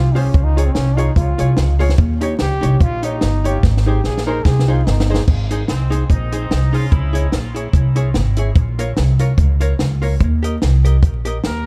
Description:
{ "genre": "ska", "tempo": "146 BPM", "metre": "4/4", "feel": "swing 55% on 8ths", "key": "Ab major", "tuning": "A4 = 440 Hz", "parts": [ { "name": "bright trombone", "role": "melody", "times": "0.0-5.1 s", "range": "C4 to Bb4", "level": "-28 LUFS", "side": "equal", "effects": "dub echo" }, { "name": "upright bass", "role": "bass", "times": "0.0-11.7 s", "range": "G1 to Eb2", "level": "-18 LUFS", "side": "equal", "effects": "none" }, { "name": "warm upright piano", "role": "stabs", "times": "0.1-5.2 s", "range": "Eb4 to Db5", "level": "-30 LUFS", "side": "equal", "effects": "none" }, { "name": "archtop guitar, miked and amplified", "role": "accompaniment", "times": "0.2-11.4 s", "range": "Eb4 to Eb5", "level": "-29 LUFS", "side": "equal", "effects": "dub echo" }, { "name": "compact cocktail drum kit", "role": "drums", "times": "0.2-11.5 s", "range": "crash cymbal, hi-hat, kick drum, snare drum", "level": "-20 LUFS", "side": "equal", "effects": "none" }, { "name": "clear horn section", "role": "melody", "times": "5.7-7.3, 11.5-11.7 s", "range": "Ab3 to Bb4", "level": "-34 LUFS", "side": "equal", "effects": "dub echo" } ], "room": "little or no reverb", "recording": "vinyl crackle", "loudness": "-16 LUFS", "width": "mono", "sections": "0.0-5.3 A section; 5.3-11.7 B section", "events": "trombone solo 0.0-5.3; drum fill 3.6-5.3", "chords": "0.3 Db; 2.0 Eb7; 3.6 Ab; 6.9 Dbm; 8.6 Bbm; 10.2 Eb", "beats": "| 0.34 0.76 1.17 1.58 | 1.99 2.40 2.81 3.22 | 3.63 4.04 4.45 4.86 | 5.28 5.69 6.10 6.51 | 6.92 7.33 7.74 8.15 | 8.56 8.97 9.38 9.79 | 10.21 10.62 11.03 11.44" }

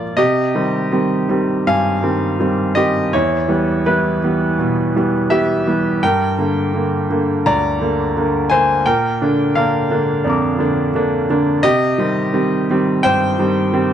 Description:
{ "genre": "neoclassical minimalist piano", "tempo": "85 BPM", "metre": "4/4", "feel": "rubato", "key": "C minor", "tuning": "A4 = 435 Hz", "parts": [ { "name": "clear grand piano", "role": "solo", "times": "0.0-13.9 s", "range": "D2 to F6", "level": "-14 LUFS", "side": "equal", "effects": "none" } ], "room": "moderate studio reverb, RT60 0.6 s", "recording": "none", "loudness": "-14 LUFS", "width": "side -9 dB against mid", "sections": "0.2-13.9 A section", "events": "none", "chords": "0.2 Cm; 3.1 Em; 6.0 Gm; 8.8 Bb; 11.6 Cm", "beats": "| 0.18 0.92 1.67 2.40 | 3.13 3.85 4.58 5.30 | 6.02 6.73 7.44 8.14 | 8.84 9.54 10.23 10.93 | 11.63 12.33 13.03 13.72" }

